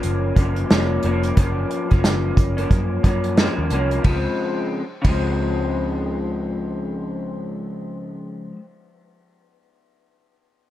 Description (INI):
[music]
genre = indie pop, bedroom pop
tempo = 90 BPM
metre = 4/4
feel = swing 60% on 16ths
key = Db major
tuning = A4 = 444 Hz
[part]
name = electric guitar through a small old amp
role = accompaniment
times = 0.0-8.6 s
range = Gb2 to Db4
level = -23 LUFS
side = left 2 dB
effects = analog chorus, warbly pitch drift
[part]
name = vintage muted picked electric bass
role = bass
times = 0.0-8.2 s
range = F1 to Gb2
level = -24 LUFS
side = equal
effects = none
[part]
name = unplugged drum kit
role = drums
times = 0.0-5.3 s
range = hi-hat, kick drum, ride cymbal, snare drum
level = -19 LUFS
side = equal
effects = none
[sound]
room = light reverb, studio reverb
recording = dark, warm production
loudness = -18 LUFS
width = side -13 dB against mid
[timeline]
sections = 0.0-4.0 A section; 4.0-6.7 B section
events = none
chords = 0.0 Gbmaj7; 4.0 Dbmaj7